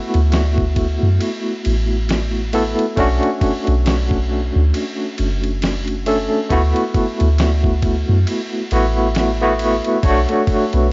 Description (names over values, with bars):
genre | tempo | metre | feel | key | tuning
trip hop | 68 BPM | 4/4 | swing 58% on 16ths | unclear | A4 = 440 Hz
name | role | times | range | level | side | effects
barky tine electric piano | accompaniment | 0.0-10.9 s | A3 to C#5 | -18 LUFS | equal | tremolo, tape echo
soft 808-style bass | bass | 0.1-10.9 s | F#1 to F#2 | -17 LUFS | equal | none
dusty soul sampler-style drum kit | drums | 0.1-10.9 s | kick drum, ride cymbal, snare drum | -24 LUFS | equal | studio ambience
felt-muted upright piano | arpeggios | 10.3-10.9 s | A3 to B3 | -24 LUFS | left 1 dB | none
room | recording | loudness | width
little or no reverb | dry, gritty hardware recording, vinyl crackle, nothing above 7.6 kHz | -15 LUFS | side -26 dB against mid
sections
0.0-10.9 A section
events
none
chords
0.0 D69; 3.0 Bm7; 6.5 D69; 10.0 Bm7